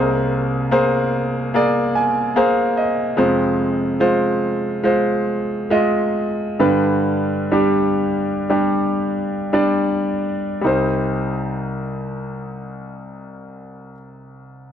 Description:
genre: pop.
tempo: 52-73 BPM.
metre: 4/4.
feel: straight.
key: C minor.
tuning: A4 = 445 Hz.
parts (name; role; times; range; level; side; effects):
bright concert grand piano; solo; 0.0-14.7 s; C2 to Ab5; -17 LUFS; equal; none.
room: small room reverb.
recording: dry, close 1970s-style studio recording.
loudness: -17 LUFS.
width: side -9 dB against mid.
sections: 0.0-10.6 A section; 10.6-14.7 B section.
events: grand piano fill 1.5-3.2; slowing down 3.2-10.6.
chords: 0.0 Abadd9/C; 3.2 Fm; 6.6 G; 10.6 Cm.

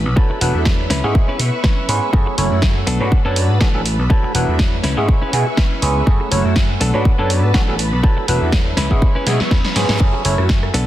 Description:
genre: filtered disco house.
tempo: 122 BPM.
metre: 4/4.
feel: swing 55% on 16ths.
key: F# minor.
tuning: A4 = 439 Hz.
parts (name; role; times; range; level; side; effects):
string machine, full ensemble; sustained chords; 0.0-10.9 s; D3 to E6; -26 LUFS; equal; ensemble chorus, vintage 12-bit sampler grit, sidechain pumping, low-pass filter.
vintage slap bass; bass; 0.0-10.8 s; E1 to B2; -19 LUFS; equal; sidechain pumping, low-pass filter.
overdriven clav; accompaniment; 0.2-10.7 s; F#3 to G#5; -21 LUFS; right 1 dB; phaser, sidechain pumping, low-pass filter.
direct-recorded clean electric guitar; riff; 0.2-10.9 s; B3 to E5; -26 LUFS; left 1 dB; sidechain pumping, low-pass filter.
electronic kick drum; drums; 0.2-10.6 s; none; -15 LUFS; equal; none.
punchy analog drum machine; drums; 0.4-10.8 s; hi-hat, rim click, snare drum; -23 LUFS; equal; sidechain pumping on hats.
reverse cymbal; sound effects; 9.2-10.0 s; none; -30 LUFS; equal; none.
room: light reverb.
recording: dense, heavily limited modern master.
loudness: -14 LUFS.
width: side -13 dB against mid.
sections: 0.0-10.9 A section.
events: clean electric guitar fill 5.3-6.1; drum fill 9.3-10.0.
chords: 0.2 E7sus4; 0.9 C#m7; 2.1 F#m7; 2.9 Bm7; 4.1 E7sus4; 4.8 C#m7; 6.1 F#m7; 6.8 Bm7; 8.0 E7sus4; 8.8 C#m7; 10.0 F#m7.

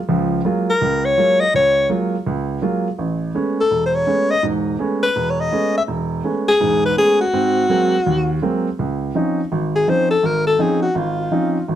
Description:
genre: jazz.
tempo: 166 BPM.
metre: 4/4.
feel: swing 64% on 8ths.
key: unclear.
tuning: A4 = 440 Hz.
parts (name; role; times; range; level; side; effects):
warm upright piano; accompaniment; 0.1-11.8 s; E1 to F4; -19 LUFS; right 2 dB; none.
bright alto saxophone; melody; 0.7-11.7 s; F4 to E5; -16 LUFS; left 2 dB; plate reverb.
room: moderate studio reverb, RT60 0.6 s.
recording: dark, warm production.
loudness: -16 LUFS.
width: side -11 dB against mid.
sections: 0.0-8.8 A section; 8.8-11.8 B section.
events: alto saxophone solo 8.8-11.8.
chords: 0.0 Gbmaj9; 3.0 Amaj9; 7.3 Ab9; 8.8 Dbmaj9.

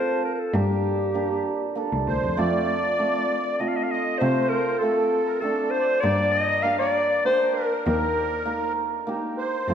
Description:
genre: klezmer.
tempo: 98 BPM.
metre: 3/4.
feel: straight.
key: unclear.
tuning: A4 = 440 Hz.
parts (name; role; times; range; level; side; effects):
breathy clarinet; melody; 0.0-9.7 s; G4 to F5; -24 LUFS; left 2 dB; tape echo.
hammered dulcimer; accompaniment; 0.0-9.7 s; A3 to Bb4; -27 LUFS; right 3 dB; none.
rich cello; bass; 0.5-9.7 s; C2 to C3; -27 LUFS; equal; none.
musette accordion; second line; 2.1-9.7 s; A4 to F5; -30 LUFS; right 4 dB; tape echo.
room: wet recital hall reverb, RT60 1.4 s.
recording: dark, warm production.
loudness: -21 LUFS.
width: side -8 dB against mid.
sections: 0.0-2.4 A section; 2.4-9.7 B section.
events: none.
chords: 0.0 F; 0.5 Gm; 2.4 F; 6.0 Gm; 7.9 Eb.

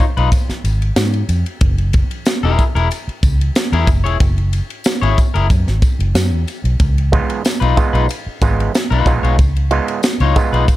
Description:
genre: funk.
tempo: 93 BPM.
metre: 4/4.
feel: straight.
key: Db mixolydian.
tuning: A4 = 439 Hz.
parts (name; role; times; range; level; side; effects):
electric guitar at the edge of break-up; accompaniment; 0.0-10.7 s; Eb4 to Db5; -20 LUFS; left 8 dB; none.
crisp fusion drum kit; drums; 0.0-10.8 s; kick drum, ride cymbal, snare drum; -16 LUFS; equal; none.
tambourine; percussion; 0.0-10.8 s; none; -34 LUFS; left 3 dB; none.
vintage muted fingered electric bass; bass; 0.2-10.7 s; Fb1 to Ab2; -16 LUFS; equal; none.
overdriven clav; stabs; 7.1-10.7 s; Ab3 to F4; -19 LUFS; right 5 dB; auto-wah.
room: small room ambience.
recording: dark, warm production.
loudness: -13 LUFS.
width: side -16 dB against mid.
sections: 0.0-10.8 A section.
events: none.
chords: 0.0 Db7 (rootless); 1.6 Gb9; 6.8 Db9.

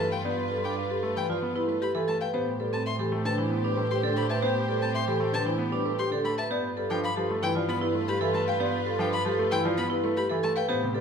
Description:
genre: classical, minimalist pattern music.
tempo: 115 BPM.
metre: 4/4.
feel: straight.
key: G mixolydian.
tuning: A4 = 440 Hz.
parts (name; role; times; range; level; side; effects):
marimba with medium mallets; melody; 0.0-11.0 s; G4 to F5; -32 LUFS; left 8 dB; none.
mellow clarinet; second line; 0.0-11.0 s; B4 to C5; -36 LUFS; right 6 dB; none.
clear concert grand piano; accompaniment; 0.0-11.0 s; C3 to B3; -32 LUFS; left 1 dB; none.
warm symphonic violin section; sustained chords; 0.0-11.0 s; F4 to C5; -35 LUFS; left 4 dB; none.
vibraphone with hard mallets; arpeggios; 0.0-11.0 s; C4 to B4; -31 LUFS; right 5 dB; none.
warm violin; arpeggios; 0.0-10.7 s; G5 to C6; -35 LUFS; left 3 dB; none.
rich double bass; bass; 0.0-11.0 s; G2 to A2; -34 LUFS; right 3 dB; none.
room: wet recital hall reverb, RT60 1.3 s.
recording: minimal, uncompressed stereo recording.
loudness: -25 LUFS.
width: side -6 dB against mid.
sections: 0.0-11.0 A section.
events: none.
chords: 0.0 G13; 2.3 Am9; 6.5 G13.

